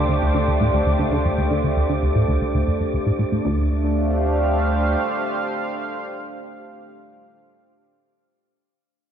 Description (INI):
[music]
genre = ambient, sequencer-driven space music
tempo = 116 BPM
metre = 4/4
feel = straight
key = D minor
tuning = A4 = 439 Hz
[part]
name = sweeping resonant pad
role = sustained chords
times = 0.0-7.2 s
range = A3 to F5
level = -22 LUFS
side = right 1 dB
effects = chorus
[part]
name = concert harp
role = arpeggios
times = 0.0-1.8 s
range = D4 to F5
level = -39 LUFS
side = moving between left 10 dB and left 2 dB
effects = none
[part]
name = plucky analog bass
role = riff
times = 0.0-3.7 s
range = D2 to D3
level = -22 LUFS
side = equal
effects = wide subtle chorus, ping-pong delay
[part]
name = warm sub bass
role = bass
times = 0.0-5.0 s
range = D2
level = -24 LUFS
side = equal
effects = none
[part]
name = wind-like tuned noise texture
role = texture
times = 0.0-3.5 s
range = D5 to D6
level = -31 LUFS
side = left 2 dB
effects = built-in reverb
[sound]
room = moderate plate reverb, RT60 2.8 s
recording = echo-heavy mix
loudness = -18 LUFS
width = side -8 dB against mid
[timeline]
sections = 0.0-3.4 A section; 3.4-7.6 B section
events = filter sweep on analog synth bass 0.0-3.4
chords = 0.0 Dm